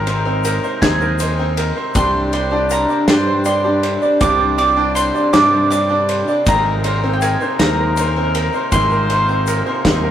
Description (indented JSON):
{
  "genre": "indie folk with a building arrangement",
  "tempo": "53 BPM (dotted quarters)",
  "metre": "6/8",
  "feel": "straight",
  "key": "unclear",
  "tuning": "A4 = 441 Hz",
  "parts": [
    { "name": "mandolin", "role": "melody", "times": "0.0-10.1 s", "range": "G5 to D6", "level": "-19 LUFS", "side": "right 2 dB", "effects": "none" },
    { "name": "warm trumpet", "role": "second line", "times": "0.0-10.1 s", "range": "G4 to D5", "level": "-26 LUFS", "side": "left 2 dB", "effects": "none" },
    { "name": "bright baby grand piano", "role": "accompaniment", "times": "0.0-10.1 s", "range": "Ab1 to Eb5", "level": "-31 LUFS", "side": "right 2 dB", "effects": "none" },
    { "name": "picked twelve-string acoustic guitar", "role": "accompaniment", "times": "0.0-10.1 s", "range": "C3 to Bb4", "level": "-23 LUFS", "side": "left 2 dB", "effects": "none" },
    { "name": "hand-pumped harmonium", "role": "sustained chords", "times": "0.0-10.1 s", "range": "C3 to G4", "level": "-29 LUFS", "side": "equal", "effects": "none" },
    { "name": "bright upright piano", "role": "arpeggios", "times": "0.0-10.1 s", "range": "C4 to D5", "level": "-20 LUFS", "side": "right 1 dB", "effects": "digital delay" },
    { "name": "fingered electric bass", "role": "bass", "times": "0.0-10.1 s", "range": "Ab1 to G2", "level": "-21 LUFS", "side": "equal", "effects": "none" },
    { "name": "loose indie drum kit", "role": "drums", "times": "0.1-10.0 s", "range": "kick drum, ride cymbal, snare drum", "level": "-22 LUFS", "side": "equal", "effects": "none" },
    { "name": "tube shaker", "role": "percussion", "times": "0.4-9.6 s", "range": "none", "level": "-33 LUFS", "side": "left 5 dB", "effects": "none" }
  ],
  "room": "moderate studio reverb, RT60 0.5 s",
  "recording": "rough rehearsal-room recording",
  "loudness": "-14 LUFS",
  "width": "side -10 dB against mid",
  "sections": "0.0-10.1 A section",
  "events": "none",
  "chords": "0.0 Abadd9; 2.0 Csus2; 6.5 Abadd9"
}